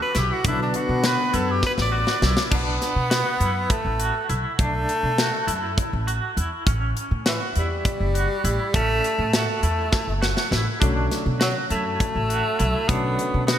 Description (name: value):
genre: progressive instrumental, band music in an uneven meter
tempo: 202 BPM (eighths)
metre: 7/8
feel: straight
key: B minor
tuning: A4 = 444 Hz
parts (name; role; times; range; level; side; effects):
- bright tenor saxophone; melody; 0.0-13.6 s; E3 to D5; -25 LUFS; equal; slapback echo, ping-pong delay
- breathy trombone; second line; 0.0-2.2 s; B3 to C#4; -29 LUFS; left 4 dB; slapback echo, ping-pong delay
- clear concert grand piano; accompaniment; 0.0-2.5, 10.8-13.6 s; D3 to D4; -31 LUFS; left 2 dB; slapback echo
- clean electric guitar; arpeggios; 0.0-13.6 s; C#4 to F#4; -29 LUFS; right 2 dB; tremolo, slapback echo
- tight metal drum kit; drums; 0.1-13.6 s; crash cymbal, hi-hat, kick drum, snare drum; -25 LUFS; left 1 dB; none
- upright bass; bass; 0.2-13.6 s; F#1 to B2; -25 LUFS; equal; none
room: moderate lush hall reverb, RT60 2.5 s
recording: big arena sound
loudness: -20 LUFS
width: side -10 dB against mid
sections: 0.0-2.5 A section; 2.5-13.6 B section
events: tenor saxophone solo 0.0-2.5; drum fill 1.6-2.5, 9.9-10.8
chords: 0.5 Bm7; 6.7 A; 10.8 Bm7